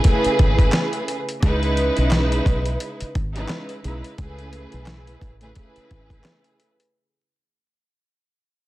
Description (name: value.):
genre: hip hop, boom-bap hip-hop.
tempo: 87 BPM.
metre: 4/4.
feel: swing 58% on 16ths.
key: unclear.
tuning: A4 = 440 Hz.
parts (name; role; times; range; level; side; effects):
warm studio string section; accompaniment; 0.0-6.7 s; C#3 to B4; -23 LUFS; right 1 dB; high-pass filter, low-pass filter.
dusty soul sampler-style drum kit; drums; 0.0-6.9 s; handclaps, hi-hat, kick drum, snare drum; -19 LUFS; equal; vintage 12-bit sampler grit.
deep dub fingered electric bass; bass; 0.3-6.2 s; G#1 to C#2; -23 LUFS; equal; none.
room: digital ambience.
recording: dense, heavily limited modern master, vinyl crackle.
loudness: -18 LUFS.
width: side -16 dB against mid.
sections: 0.0-6.9 A section.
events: fade-out 0.0-6.9.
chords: 0.0 Amaj7; 1.4 C#m7; 4.2 Amaj7.